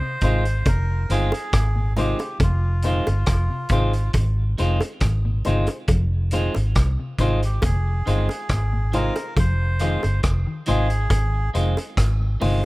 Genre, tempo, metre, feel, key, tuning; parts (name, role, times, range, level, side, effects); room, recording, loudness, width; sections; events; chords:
roots reggae; 69 BPM; 4/4; straight; F minor; A4 = 440 Hz
melodica; melody; 0.0-11.5 s; F4 to C5; -31 LUFS; right 1 dB; tape echo
mellow electric guitar; arpeggios; 0.0-12.6 s; Ab2 to F3; -32 LUFS; left 2 dB; spring reverb
clean electric guitar; accompaniment; 0.2-12.6 s; Eb3 to F4; -30 LUFS; right 3 dB; tape echo
warm upright piano; stabs; 0.2-12.6 s; Eb4 to C5; -28 LUFS; left 3 dB
vintage muted fingered electric bass; bass; 0.2-12.6 s; F1 to C2; -21 LUFS; equal
vintage drum kit; drums; 0.2-12.6 s; hi-hat, kick drum, rim click; -24 LUFS; equal
bongos; percussion; 0.7-12.6 s; -30 LUFS; right 1 dB
small room reverb; rough home demo mix; -19 LUFS; side -20 dB against mid
0.0-12.7 A section
0.0 Fm7